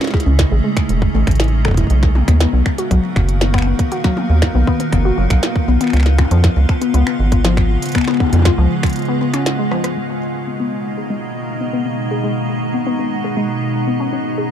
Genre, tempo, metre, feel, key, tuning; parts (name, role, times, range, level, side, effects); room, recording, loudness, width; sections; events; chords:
IDM; 119 BPM; 4/4; straight; G# dorian; A4 = 440 Hz
icy glass pad; sustained chords; 0.0-14.5 s; A2 to F#4; -21 LUFS; right 2 dB; chorus, built-in reverb
warbly dusty pluck; arpeggios; 0.0-14.4 s; E#3 to A4; -21 LUFS; left 5 dB; chorus, digital delay
glitchy drum kit; drums; 0.0-9.9 s; finger snaps, hi-hat, rim click, snare drum, toms; -24 LUFS; equal; overdrive, low-pass filter on hats, low-pass filter on snare, low-pass filter on toms, low-pass filter on room, digital delay
electronic kick drum; drums; 0.1-8.9 s; -16 LUFS; equal; overdrive
rubbery square bass; bass; 0.3-8.7 s; E1 to E#2; -14 LUFS; equal
little or no reverb; dark, warm production; -14 LUFS; side -9 dB against mid
0.0-10.0 A section; 10.0-14.5 B section
filter sweep on synth pluck 0.0-10.0; break 9.0-10.0; drum fill 9.6-10.0
0.0 Amaj7; 1.9 Bmaj7; 5.9 C#7; 10.0 G#madd9; 14.0 Amaj7